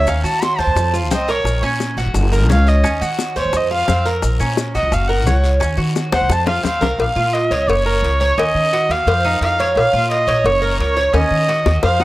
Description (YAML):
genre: latin, Cuban son and guajira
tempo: 174 BPM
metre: 4/4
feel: straight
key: Bb harmonic minor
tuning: A4 = 440 Hz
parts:
  - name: warm erhu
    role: melody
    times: 0.0-12.0 s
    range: Db5 to C6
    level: -19 LUFS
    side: equal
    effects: none
  - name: Cuban tres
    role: arpeggios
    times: 0.0-12.0 s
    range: C4 to Db5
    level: -20 LUFS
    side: right 2 dB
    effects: none
  - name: upright bass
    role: bass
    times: 0.0-12.0 s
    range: Gb1 to Eb3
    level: -18 LUFS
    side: equal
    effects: none
  - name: bongos and cowbell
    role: percussion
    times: 0.1-12.0 s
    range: none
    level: -23 LUFS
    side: left 4 dB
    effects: none
  - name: guiro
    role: percussion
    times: 0.1-12.0 s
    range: none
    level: -32 LUFS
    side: left 3 dB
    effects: none
  - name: maracas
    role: percussion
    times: 0.1-7.0 s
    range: none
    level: -33 LUFS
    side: left 5 dB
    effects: none
room: moderate spring reverb, RT60 2.6 s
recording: none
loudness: -14 LUFS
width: side -17 dB against mid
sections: 0.0-7.0 A section; 7.0-12.0 B section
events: erhu solo 0.0-7.0; drum fill 6.1-7.0, 11.7-12.0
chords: 0.1 Ebm7; 0.8 F5; 1.5 Bbm; 2.2 Gb; 2.8 Ebm7; 3.5 F5; 4.2 Bbm; 4.9 Gb; 5.6 Ebm7; 6.3 F5; 7.0 Bbm; 7.7 Gb; 8.4 Ebm7; 9.1 F5; 9.8 Bbm; 10.4 Gb; 11.1 Ebm7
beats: | 0.07 0.42 0.77 1.11 | 1.46 1.80 2.15 2.50 | 2.84 3.19 3.54 3.88 | 4.23 4.58 4.92 5.27 | 5.61 5.96 6.30 6.65 | 7.00 7.34 7.69 8.03 | 8.38 8.72 9.07 9.41 | 9.76 10.10 10.45 10.79 | 11.14 11.48 11.83